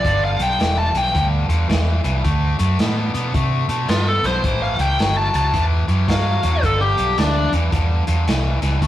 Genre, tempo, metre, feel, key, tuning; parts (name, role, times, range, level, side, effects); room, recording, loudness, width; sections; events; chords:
electric blues shuffle; 110 BPM; 4/4; swing 63% on 8ths; A4 = 440 Hz
biting lead guitar; melody; 0.0-7.5 s; D4 to A5; -20 LUFS; left 1 dB; overdrive
biting overdriven guitar; riff; 0.0-8.9 s; G2 to B3; -24 LUFS; left 2 dB
vintage muted fingered electric bass; bass; 0.0-8.9 s; E1 to C3; -19 LUFS; equal
crunchy breakbeat drum kit; drums; 0.0-8.9 s; hi-hat, kick drum, snare drum; -24 LUFS; equal
moderate stone room reverb, RT60 1.1 s; rough rehearsal-room recording, warm saturation; -16 LUFS; side -13 dB against mid
0.0-8.9 A section
0.0 G; 2.2 D5; 4.4 A; 6.6 G5